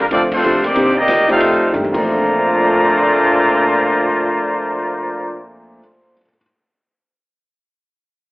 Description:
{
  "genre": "jazz, big band swing",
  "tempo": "184 BPM",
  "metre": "4/4",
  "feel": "swing 64% on 8ths",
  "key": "Bb major",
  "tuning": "A4 = 440 Hz",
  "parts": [
    { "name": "bright trumpet section", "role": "melody", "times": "0.0-5.4 s", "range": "G3 to Bb5", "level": "-16 LUFS", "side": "equal", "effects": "none" },
    { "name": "clear trombone section", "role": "second line", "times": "0.0-5.4 s", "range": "Bb2 to F4", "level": "-18 LUFS", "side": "equal", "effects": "none" },
    { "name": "upright bass", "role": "bass", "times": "0.0-5.8 s", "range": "A1 to G2", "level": "-34 LUFS", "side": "equal", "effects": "tube saturation" },
    { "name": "clear upright piano", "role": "accompaniment", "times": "0.1-6.4 s", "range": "Bb2 to C7", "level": "-21 LUFS", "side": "equal", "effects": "none" },
    { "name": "swinging big-band drum kit", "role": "drums", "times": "0.1-2.0 s", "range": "crash cymbal, hi-hat, kick drum, ride cymbal, snare drum, toms", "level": "-27 LUFS", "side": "equal", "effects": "none" }
  ],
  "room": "moderate large studio reverb, RT60 1.2 s",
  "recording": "worn, warbling old tape, cassette tape, warbly pitch drift, telephone sound",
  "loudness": "-13 LUFS",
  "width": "side -21 dB against mid",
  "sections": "0.0-2.1 A section; 2.1-4.7 B section",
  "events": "band accent 0.3; drum fill 1.7-2.1",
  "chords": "0.1 Dm7; 0.8 Cm9; 1.4 F13; 1.9 Bbmaj9",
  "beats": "0.11 0.43 | 0.76 1.08 1.41 1.73 | 2.06 2.38 2.71 3.04 | 3.36 3.69 4.01 4.34"
}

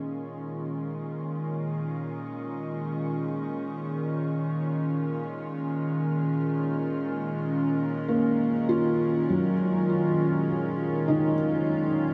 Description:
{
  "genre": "ambient",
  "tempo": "free time",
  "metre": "none",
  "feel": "none",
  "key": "B lydian",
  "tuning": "A4 = 440 Hz",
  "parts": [
    { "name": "evolving wavetable pad", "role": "sustained chords", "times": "0.0-12.1 s", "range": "A#2 to E#4", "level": "-30 LUFS", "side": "equal", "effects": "chorus, built-in reverb" },
    { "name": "felt-muted upright piano", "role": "arpeggios", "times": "8.1-12.1 s", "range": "D#3 to E#4", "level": "-27 LUFS", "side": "equal", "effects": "delay" }
  ],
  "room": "wet huge ambient reverb, RT60 7.6 s",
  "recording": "none",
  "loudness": "-28 LUFS",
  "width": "mono",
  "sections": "0.0-12.1 A section",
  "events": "fade-in on ambient pad 0.0-12.1",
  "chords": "0.0 Bmaj7 (rootless)",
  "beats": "free time"
}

